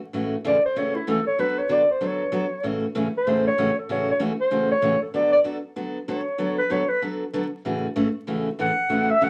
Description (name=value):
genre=country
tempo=192 BPM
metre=4/4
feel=swing 63% on 8ths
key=A major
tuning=A4 = 442 Hz
part: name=picked steel-string acoustic guitar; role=accompaniment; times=0.1-9.3 s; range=A2 to A4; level=-28 LUFS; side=equal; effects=none
part: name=mellow clarinet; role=melody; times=0.5-9.3 s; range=E4 to F#5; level=-24 LUFS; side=equal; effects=none
room=wet small room reverb, RT60 0.5 s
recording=vinyl crackle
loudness=-23 LUFS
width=mono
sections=0.1-9.3 A section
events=clarinet solo 0.1-9.3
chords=0.1 A6; 1.4 D6; 2.6 A6; 5.1 D6; 7.7 A6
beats=| 0.14 0.45 0.76 1.08 | 1.39 1.70 2.02 2.33 | 2.64 2.96 3.27 3.58 | 3.90 4.21 4.52 4.83 | 5.15 5.46 5.77 6.09 | 6.40 6.71 7.03 7.34 | 7.65 7.96 8.28 8.59 | 8.90 9.21